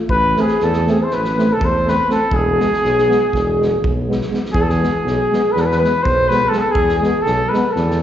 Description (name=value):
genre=balkan folk, Balkan brass band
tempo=243 BPM (eighths)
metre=9/8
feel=straight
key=E major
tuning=A4 = 440 Hz
part: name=mellow cornet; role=melody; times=0.1-8.0 s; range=G#4 to C5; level=-17 LUFS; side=left 2 dB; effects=slapback echo
part: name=dark clarinet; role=second line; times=0.1-8.0 s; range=G#4 to C5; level=-24 LUFS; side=right 2 dB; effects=none
part: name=warm tuba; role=bass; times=0.1-8.0 s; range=E1 to E2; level=-20 LUFS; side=equal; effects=none
part: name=loose indie drum kit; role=percussion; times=0.1-8.0 s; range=kick drum, snare drum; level=-25 LUFS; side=equal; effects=none
part: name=dark euphonium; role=accompaniment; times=0.4-7.6 s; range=G#3 to A3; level=-21 LUFS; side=right 3 dB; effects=slapback echo
part: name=warm euphonium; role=accompaniment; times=0.4-7.6 s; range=B3 to C4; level=-25 LUFS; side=left 4 dB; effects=slapback echo
room=studio reverb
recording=live gig heard through the venue's PA, recital hall reverb, nothing above 7.6 kHz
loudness=-14 LUFS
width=side -10 dB against mid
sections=0.0-4.5 A section; 4.5-8.0 B section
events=none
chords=0.1 Am; 2.3 E